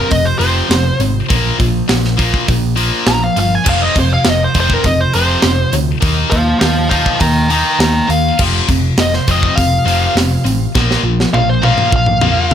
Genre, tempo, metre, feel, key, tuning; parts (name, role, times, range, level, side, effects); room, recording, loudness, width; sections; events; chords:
hard rock; 102 BPM; 4/4; straight; A4 = 440 Hz
bluesy overdriven lead guitar; melody; 0.0-12.5 s; Bb4 to Bb5; -16 LUFS; equal; distortion, plate reverb, digital delay
tight distorted guitar; riff; 0.0-12.5 s; F2 to Eb4; -16 LUFS; left 1 dB; distortion
hollow-body short-scale picked electric bass; bass; 0.0-12.5 s; F1 to Eb2; -17 LUFS; equal
tight metal drum kit; drums; 0.1-12.5 s; crash cymbal, hi-hat, kick drum, snare drum, toms; -17 LUFS; equal
light reverb; -11 LUFS; side -9 dB against mid
0.0-12.5 A section
lead electric guitar solo 0.0-12.5; drum fill 10.7-12.5
0.0 Fm; 1.3 Bb5; 3.7 F5; 6.0 Eb; 8.4 F5; 10.7 Bb5